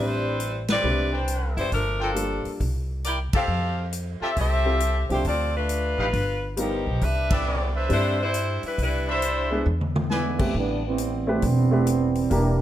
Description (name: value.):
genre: jazz, big band swing.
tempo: 136 BPM.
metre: 4/4.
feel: swing 66% on 8ths.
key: unclear.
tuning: A4 = 441 Hz.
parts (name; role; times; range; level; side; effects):
bright saxophone section; melody; 0.0-9.7 s; F3 to G5; -26 LUFS; left 1 dB; none.
warm grand piano; accompaniment; 0.0-12.6 s; F3 to D5; -27 LUFS; equal; none.
upright bass; bass; 0.0-12.6 s; E1 to G2; -26 LUFS; equal; none.
swinging big-band drum kit; drums; 0.4-12.4 s; crash cymbal, hi-hat, kick drum, ride cymbal, snare drum, toms; -30 LUFS; equal; none.
clear trumpet section; stabs; 1.1-10.5 s; D4 to B5; -30 LUFS; equal; none.
mellow trombone section; second line; 10.1-12.6 s; D3 to D4; -25 LUFS; right 5 dB; none.
room: light reverb.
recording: none.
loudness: -22 LUFS.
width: side -12 dB against mid.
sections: 0.0-10.5 A section; 10.5-12.6 B section.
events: band accent 0.6, 3.3, 7.2; drum fill 9.7-10.1; trombone section solo 10.5-12.6.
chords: 0.0 Am11; 1.7 Gm9; 2.6 C5; 3.5 Fmaj9; 5.2 Dm7; 6.1 G7alt; 7.0 Cmaj9; 9.7 E7; 10.5 Am9.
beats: 0.39 0.83 1.27 | 1.72 2.16 2.60 3.04 | 3.48 3.92 4.36 4.80 | 5.25 5.69 6.13 6.57 | 7.01 7.45 7.89 8.34 | 8.78 9.22 9.66 10.11 | 10.55 10.99 11.43 11.87 | 12.31.